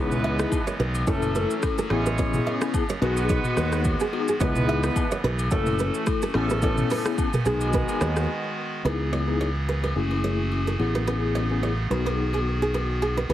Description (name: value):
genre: afrobeats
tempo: 108 BPM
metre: 4/4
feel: swing 55% on 16ths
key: C# minor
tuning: A4 = 440 Hz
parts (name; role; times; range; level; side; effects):
- warm horn section; second line; 0.0-8.5 s; D#3 to C#5; -30 LUFS; right 4 dB; none
- mellow tine electric piano; accompaniment; 0.0-13.3 s; A3 to A4; -28 LUFS; left 4 dB; ensemble chorus
- pipe organ, clarinet reed; sustained chords; 0.0-13.3 s; C#3 to G#5; -33 LUFS; right 2 dB; sidechain pumping
- nylon-string guitar; riff; 0.0-13.3 s; G#4 to E5; -30 LUFS; right 3 dB; tape echo
- fingered electric bass; bass; 0.0-13.3 s; F#1 to D#2; -26 LUFS; equal; none
- afro-pop drum kit; drums; 0.1-8.3 s; hi-hat, kick drum, rim click, shaker, toms; -27 LUFS; equal; none
- agogo bells and woodblock; percussion; 0.2-13.3 s; none; -36 LUFS; left 5 dB; none
room: light reverb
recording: heavily compressed radio sound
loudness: -22 LUFS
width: side -12 dB against mid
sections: 0.0-8.8 A section; 8.8-13.3 B section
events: break 8.3-8.8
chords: 0.0 C#m7; 1.1 F#m7; 1.9 Amaj9; 3.0 G#m7/B; 4.4 C#m7; 5.5 F#m7; 6.3 Amaj9; 7.5 G#m7/B; 8.8 C#m7; 10.0 F#m9; 10.8 Amaj9; 11.9 G#m7/B